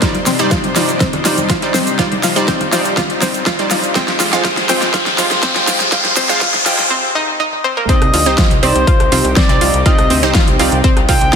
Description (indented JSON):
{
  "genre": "progressive house",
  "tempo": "122 BPM",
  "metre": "4/4",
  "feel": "straight",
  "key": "C minor",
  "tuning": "A4 = 440 Hz",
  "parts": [
    { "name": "lush unison pad", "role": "sustained chords", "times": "0.0-11.4 s", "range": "F2 to C5", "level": "-23 LUFS", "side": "left 1 dB", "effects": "chorus, sidechain pumping" },
    { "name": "analog pluck", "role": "arpeggios", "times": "0.0-11.4 s", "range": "Bb3 to F4", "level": "-19 LUFS", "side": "left 1 dB", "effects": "chorus, sidechain pumping, ping-pong delay" },
    { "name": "wide unison pluck", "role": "stabs", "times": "0.0-11.2 s", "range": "G3 to G5", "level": "-19 LUFS", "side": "right 2 dB", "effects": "sidechain pumping, ping-pong delay" },
    { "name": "big-room dance drum kit", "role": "drums", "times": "0.0-11.4 s", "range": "hi-hat, rim click, snare drum, toms", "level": "-18 LUFS", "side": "equal", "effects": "overdrive, studio reverb" },
    { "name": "electronic kick drum", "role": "drums", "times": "0.0-11.4 s", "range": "none", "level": "-15 LUFS", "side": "equal", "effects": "overdrive, studio reverb" },
    { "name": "cabasa", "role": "percussion", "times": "0.0-6.9 s", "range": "none", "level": "-24 LUFS", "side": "right 4 dB", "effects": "none" },
    { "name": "riser", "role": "sound effects", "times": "2.7-6.9 s", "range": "none", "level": "-20 LUFS", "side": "left 1 dB", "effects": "none" },
    { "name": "congas", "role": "percussion", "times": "0.1-6.6 s", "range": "none", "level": "-28 LUFS", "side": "right 3 dB", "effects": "none" },
    { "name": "expressive portamento lead", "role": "melody", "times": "7.9-11.4 s", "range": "C5 to G5", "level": "-18 LUFS", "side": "left 1 dB", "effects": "chorus, sidechain pumping, ping-pong delay" },
    { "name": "soft synth bell", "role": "second line", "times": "7.9-11.4 s", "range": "C5 to G5", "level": "-26 LUFS", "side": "left 1 dB", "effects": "none" },
    { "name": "plucky analog bass", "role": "bass", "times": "8.0-11.3 s", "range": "C2 to D2", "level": "-17 LUFS", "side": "equal", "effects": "tube saturation, sidechain pumping" }
  ],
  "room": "moderate lush hall reverb, RT60 2.2 s",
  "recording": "dense, heavily limited modern master, high-pass filter",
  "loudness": "-11 LUFS",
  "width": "side -7 dB against mid",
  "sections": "0.0-7.9 A section; 7.9-11.4 B section",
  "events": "build-up 0.0-7.9; drum fill 0.0-6.9, 7.4-7.9; filter sweep on synth arpeggio sound 0.0-7.9; filter sweep 0.0-7.9; riser 2.7-6.9; break 6.9-7.9; drop 7.9-11.4",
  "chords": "0.0 Cmadd9; 4.0 Fmadd9; 7.9 Cmadd9",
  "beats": "| 0.02 0.51 1.00 1.50 | 1.99 2.48 2.97 3.46 | 3.96 4.45 4.94 5.43 | 5.92 6.42 6.91 7.40 | 7.89 8.38 8.87 9.37 | 9.86 10.35 10.84 11.33"
}